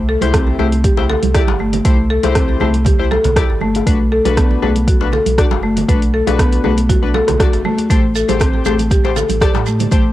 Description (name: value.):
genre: afro house.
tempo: 119 BPM.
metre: 4/4.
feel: straight.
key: unclear.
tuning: A4 = 440 Hz.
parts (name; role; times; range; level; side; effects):
warm sub bass; bass; 0.0-10.1 s; F#1 to A2; -19 LUFS; right 1 dB; transformer saturation, sidechain pumping.
buzzing marimba with hard mallets; arpeggios; 0.1-10.0 s; A3 to A4; -17 LUFS; left 1 dB; sidechain pumping, cassette tape, tape echo.
warm analog keys; stabs; 0.2-10.0 s; D4 to D5; -23 LUFS; left 7 dB; chorus, sidechain pumping, cassette tape, tape echo.
deep house drum kit; drums; 0.2-10.0 s; hi-hat, rim click; -22 LUFS; equal; overdrive, cassette tape.
congas; percussion; 0.2-10.0 s; none; -24 LUFS; right 10 dB; none.
djembe; percussion; 0.2-9.6 s; none; -24 LUFS; left 9 dB; none.
electronic kick drum; drums; 0.3-10.0 s; none; -15 LUFS; equal; overdrive, cassette tape.
swell; sound effects; 7.1-7.9 s; none; -30 LUFS; right 2 dB; none.
shekere; percussion; 7.9-10.0 s; none; -29 LUFS; right 11 dB; none.
room: light reverb.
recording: home recording on cassette.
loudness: -12 LUFS.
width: side -14 dB against mid.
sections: 0.0-10.1 A section.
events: none.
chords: 0.0 C; 3.9 Bm; 7.9 Am7.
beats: 0.34 0.84 1.35 | 1.85 2.35 2.86 3.36 | 3.87 4.37 4.88 5.38 | 5.88 6.39 6.89 7.40 | 7.90 8.41 8.91 9.41 | 9.92.